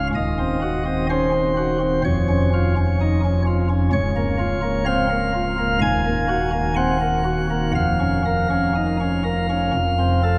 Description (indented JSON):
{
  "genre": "classical, chorale-style piece for pipe organ",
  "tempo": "60-64 BPM",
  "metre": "4/4",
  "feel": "rubato",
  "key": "Db major, Bb minor from 3.9 s",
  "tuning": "A4 = 441 Hz",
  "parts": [
    { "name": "chamber organ, sparkling flutes", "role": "solo", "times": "0.0-10.4 s", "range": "Db1 to Ab5", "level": "-20 LUFS", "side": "equal", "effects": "none" }
  ],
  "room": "wet cathedral reverb, RT60 6.1 s",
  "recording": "heard from further back in the room, nothing above 10.7 kHz",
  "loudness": "-20 LUFS",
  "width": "mono",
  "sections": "0.0-10.4 A section",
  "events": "none",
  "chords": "0.1 Ebm6; 2.0 Db/F; 3.9 Bbm/Db; 5.8 Ebm; 7.8 Bbm/F; 9.8 F"
}